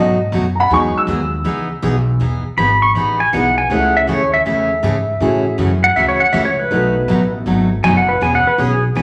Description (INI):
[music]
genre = country, western swing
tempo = 160 BPM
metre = 4/4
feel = swing 65% on 8ths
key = E major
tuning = A4 = 437 Hz
[part]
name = dark upright piano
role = accompaniment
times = 0.0-9.0 s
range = F#3 to E6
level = -22 LUFS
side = equal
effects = none
[part]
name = picked steel-string acoustic guitar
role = accompaniment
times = 0.0-9.0 s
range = B2 to G#4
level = -22 LUFS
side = equal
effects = none
[part]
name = upright bass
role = bass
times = 0.0-9.0 s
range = E1 to A2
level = -23 LUFS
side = equal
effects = none
[part]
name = pedal steel guitar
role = second line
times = 2.6-9.0 s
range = G#4 to C#6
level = -17 LUFS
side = equal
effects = none
[sound]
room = wet large studio reverb, RT60 1.1 s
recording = none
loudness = -15 LUFS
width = mono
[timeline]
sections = 0.0-2.2 A section; 2.2-9.0 A section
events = upright piano solo 0.0-2.2; pedal steel guitar solo 2.2-9.0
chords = 0.0 B7; 0.7 Emaj7; 3.7 Amaj7; 5.2 F#m9; 6.7 B7; 8.2 E6